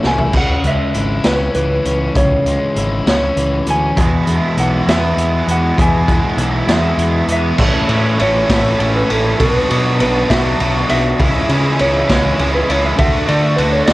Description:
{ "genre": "indie rock", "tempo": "66 BPM (dotted quarters)", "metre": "6/8", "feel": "straight", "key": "unclear", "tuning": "A4 = 442 Hz", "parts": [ { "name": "mellow electric guitar", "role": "melody", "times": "0.0-13.9 s", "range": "A4 to G#5", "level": "-19 LUFS", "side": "right 1 dB", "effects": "harmonic tremolo, cassette tape" }, { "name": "crunchy overdriven guitar", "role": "riff", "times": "0.0-13.9 s", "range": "E2 to A4", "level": "-20 LUFS", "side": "left 2 dB", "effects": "none" }, { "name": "growling picked electric bass", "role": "bass", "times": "0.0-13.9 s", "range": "G#1 to D3", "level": "-18 LUFS", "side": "equal", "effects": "overdrive" }, { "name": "raw garage drum kit", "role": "drums", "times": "0.0-13.9 s", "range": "crash cymbal, hi-hat, kick drum, ride cymbal, snare drum, toms", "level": "-18 LUFS", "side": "equal", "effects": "cassette tape" }, { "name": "distorted electric guitar", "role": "riff", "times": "4.0-13.9 s", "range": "E2 to F#4", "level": "-19 LUFS", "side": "right 3 dB", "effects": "overdrive, analog chorus" } ], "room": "light reverb", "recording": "home recording on cassette", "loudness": "-12 LUFS", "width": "side -18 dB against mid", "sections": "0.4-7.6 A section; 7.6-13.9 B section", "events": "drum fill 0.0-0.4", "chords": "0.4 C#m; 4.0 E; 7.6 A; 9.4 Bm; 11.2 C#m; 13.0 D", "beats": "| 0.35 1.26 | 2.17 3.08 | 3.99 4.89 | 5.80 6.70 | 7.61 8.51 | 9.40 10.30 | 11.20 12.09 | 12.99 13.88" }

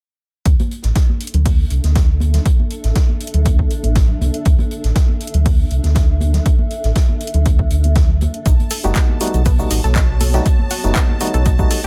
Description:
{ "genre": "deep house", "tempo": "120 BPM", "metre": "4/4", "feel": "swing 54% on 16ths", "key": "unclear", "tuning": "A4 = 440 Hz", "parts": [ { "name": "sub bass with octave", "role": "bass", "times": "0.5-11.9 s", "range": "F#1 to D2", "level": "-18 LUFS", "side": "equal", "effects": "sidechain pumping" }, { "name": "electronic kick drum", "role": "drums", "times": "0.5-11.7 s", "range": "none", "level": "-17 LUFS", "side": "equal", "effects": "overdrive" }, { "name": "punchy analog drum machine", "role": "drums", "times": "0.5-11.9 s", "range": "handclaps, hi-hat", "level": "-28 LUFS", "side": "equal", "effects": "overdrive" }, { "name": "swinging big-band drum kit", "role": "drums", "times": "0.5-11.8 s", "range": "hi-hat, snare drum", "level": "-37 LUFS", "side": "equal", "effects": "high-pass filter on hats, high-pass filter on snare, high-pass filter on room" }, { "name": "granular cloud pad", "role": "texture", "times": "1.3-11.9 s", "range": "B3 to E5", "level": "-32 LUFS", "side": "equal", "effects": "built-in reverb, sidechain pumping" }, { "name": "congas", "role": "percussion", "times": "0.6-11.9 s", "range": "none", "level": "-31 LUFS", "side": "equal", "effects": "none" }, { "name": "analog pluck", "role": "arpeggios", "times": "8.5-11.9 s", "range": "B3 to A4", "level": "-31 LUFS", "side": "equal", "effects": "chorus, sidechain pumping, dub echo" }, { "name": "tube shaker", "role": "percussion", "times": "8.5-11.9 s", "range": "none", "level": "-35 LUFS", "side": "equal", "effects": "none" }, { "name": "string machine, violins", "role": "texture", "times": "8.5-11.9 s", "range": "A5", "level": "-35 LUFS", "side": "equal", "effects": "ensemble chorus" }, { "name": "percussive organ stab", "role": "stabs", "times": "8.8-11.8 s", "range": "G3 to F#4", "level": "-25 LUFS", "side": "equal", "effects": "chorus, sidechain pumping" } ], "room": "small room ambience", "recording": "none", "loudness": "-16 LUFS", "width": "mono", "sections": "0.5-11.9 A section", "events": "filter sweep on sub bass 0.5-11.9", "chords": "0.5 Dsus2; 8.5 B7b13", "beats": "| 0.46 0.96 1.46 1.96 | 2.46 2.96 3.46 3.96 | 4.46 4.96 5.46 5.96 | 6.46 6.96 7.46 7.96 | 8.46 8.96 9.46 9.96 | 10.46 10.96 11.46" }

